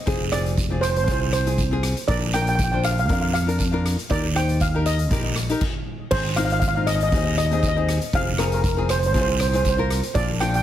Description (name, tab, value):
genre	calypso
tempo	119 BPM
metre	4/4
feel	swing 53% on 16ths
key	unclear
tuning	A4 = 440 Hz
part	steel pan	melody	0.1-10.6 s	Ab4 to G5	-24 LUFS	right 1 dB	digital delay
part	nylon-string guitar	accompaniment	0.1-10.6 s	Bb3 to C5	-28 LUFS	left 4 dB	none
part	fingered electric bass	bass	0.1-10.6 s	F1 to F2	-23 LUFS	equal	none
part	street-band drum kit	drums	0.1-10.6 s	crash cymbal, hi-hat, kick drum, rim click	-26 LUFS	equal	none
part	guiro	percussion	0.1-10.5 s	none	-34 LUFS	right 6 dB	none
room	light reverb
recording	heavily compressed radio sound, multiband compression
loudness	-19 LUFS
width	side -11 dB against mid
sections	0.0-6.1 A section; 6.1-10.6 A section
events	stop 5.6-6.1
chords	0.1 Fm; 2.1 Bb; 4.1 Eb; 6.1 Ab; 8.1 Fm